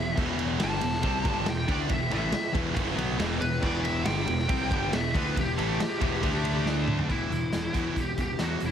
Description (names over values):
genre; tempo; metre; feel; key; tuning
hard rock; 139 BPM; 4/4; straight; E minor; A4 = 441 Hz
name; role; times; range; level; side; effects
smooth overdriven lead guitar; melody; 0.0-8.7 s; D4 to A5; -32 LUFS; left 1 dB; slapback echo
high-gain distorted guitar; riff; 0.0-8.7 s; E2 to D4; -34 LUFS; right 10 dB; distortion
overdriven semi-hollow guitar; riff; 0.0-8.7 s; E2 to D4; -34 LUFS; left 9 dB; spring reverb
fuzz picked electric bass; bass; 0.0-8.7 s; E1 to E2; -32 LUFS; equal; overdrive
chorused pulse-width pad; sustained chords; 0.2-7.1 s; D4 to G5; -43 LUFS; right 1 dB; none
tight distorted guitar; riff; 0.2-7.1 s; E2 to D4; -36 LUFS; equal; distortion
raw garage drum kit; drums; 0.2-8.7 s; crash cymbal, hi-hat, kick drum, ride cymbal, snare drum, toms; -30 LUFS; equal; none
room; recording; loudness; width
light reverb, studio reverb; heavily compressed radio sound, multiband compression; -25 LUFS; side -9 dB against mid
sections
0.0-7.1 A section; 7.1-8.7 B section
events
lead electric guitar solo 0.0-7.1; drum fill 6.7-7.1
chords
0.0 Em; 6.2 D5; 7.1 Em